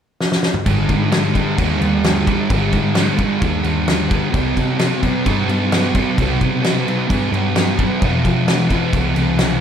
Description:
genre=rock, shoegaze and dream pop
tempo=130 BPM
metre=4/4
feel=straight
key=unclear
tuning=A4 = 441 Hz
part: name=loose indie drum kit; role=drums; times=0.2-9.5 s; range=crash cymbal, kick drum, snare drum, toms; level=-19 LUFS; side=equal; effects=none
part: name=thick fuzz guitar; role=riff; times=0.7-9.6 s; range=F2 to C4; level=-18 LUFS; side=right 1 dB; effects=distortion, analog chorus
part: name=vintage muted picked electric bass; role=bass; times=0.7-9.6 s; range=Ab1 to F3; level=-21 LUFS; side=equal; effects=none
room=moderate lush hall reverb, RT60 2.3 s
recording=dreamy mix soaked in reverb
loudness=-15 LUFS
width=side -8 dB against mid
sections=0.7-9.6 A section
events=drum fill 0.2-0.7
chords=0.0 N.C.; 0.7 Ab5; 4.3 C5; 8.0 F5

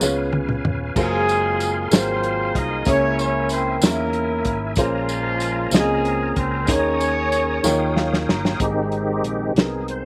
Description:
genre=slow gospel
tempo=63 BPM (dotted quarters)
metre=6/8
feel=straight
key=Ab major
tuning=A4 = 438 Hz
part: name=warm upright piano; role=accompaniment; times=0.0-10.1 s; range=Ab2 to Bb5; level=-27 LUFS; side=equal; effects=slapback echo
part: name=bright tonewheel organ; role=sustained chords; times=0.0-10.1 s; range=Eb3 to Eb6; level=-31 LUFS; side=equal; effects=slow rotary speaker, chorus vibrato
part: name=fretless electric bass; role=bass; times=0.0-10.1 s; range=Eb1 to Fb2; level=-30 LUFS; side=equal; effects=none
part: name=warm soul drum kit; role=drums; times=0.0-10.0 s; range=crash cymbal, hi-hat, kick drum, snare drum, toms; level=-23 LUFS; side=equal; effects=none
part: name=tambourine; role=percussion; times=0.0-7.9 s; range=none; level=-33 LUFS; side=equal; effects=none
part: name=warm horn section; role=melody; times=1.0-8.3 s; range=F3 to Eb5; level=-24 LUFS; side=equal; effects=slapback echo
room=little or no reverb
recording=recorded outdoors, with no room sound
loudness=-21 LUFS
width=mono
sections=0.0-8.6 A section; 8.6-10.1 B section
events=drum fill 0.0-1.0, 7.6-8.6; upright piano fill 7.6-8.6; tonewheel organ solo 8.6-10.1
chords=0.0 Db7; 1.0 Gbmaj9#11; 2.9 Dbm6; 4.8 Bbm9; 6.7 Eb7sus4; 7.6 Eb9; 8.6 Ab

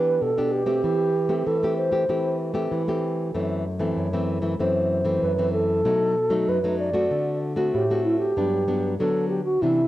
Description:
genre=samba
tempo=96 BPM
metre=4/4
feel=straight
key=unclear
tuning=A4 = 440 Hz
part: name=reedy wooden-headed alto flute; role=melody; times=0.0-9.9 s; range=E4 to D5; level=-23 LUFS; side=right 1 dB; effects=cassette tape
part: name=nylon-string guitar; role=accompaniment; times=0.0-9.9 s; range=F#2 to G4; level=-24 LUFS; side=left 1 dB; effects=none
room=moderate studio reverb, RT60 0.6 s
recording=home recording on cassette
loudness=-21 LUFS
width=side -15 dB against mid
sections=0.0-8.4 A section; 8.4-9.9 B section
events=alto flute solo 0.0-8.4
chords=0.0 Em7; 0.8 Am7/E; 3.3 F#m7b5; 5.9 B7; 7.1 D7; 8.4 Gmaj7

